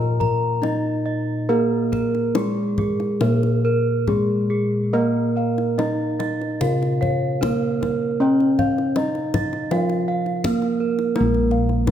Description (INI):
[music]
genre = Javanese gamelan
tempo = 70-85 BPM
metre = 4/4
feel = straight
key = Bb slendro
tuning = A4 = 440 Hz
[part]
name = gamelan-type bronze metallophone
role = melody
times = 0.0-11.9 s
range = Ab3-25c to Bb4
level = -23 LUFS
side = right 1 dB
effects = none
[part]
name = gamelan-type bossed gongs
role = arpeggios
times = 0.0-11.9 s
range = Ab4-25c to F5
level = -28 LUFS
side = left 8 dB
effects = none
[part]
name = gamelan-type bronze metallophone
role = arpeggios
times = 0.0-11.1 s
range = Ab4-25c to Bb5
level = -27 LUFS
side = right 6 dB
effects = tape echo
[part]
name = gamelan-type bossed gongs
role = bass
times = 0.0-11.9 s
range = Bb1 to Bb4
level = -23 LUFS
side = equal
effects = none
[part]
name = kendang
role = percussion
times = 0.2-11.9 s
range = none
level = -28 LUFS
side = left 3 dB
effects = none
[sound]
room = moderate recital hall reverb, RT60 1.7 s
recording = none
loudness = -18 LUFS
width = side -10 dB against mid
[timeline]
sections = 0.0-11.2 A section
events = none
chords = none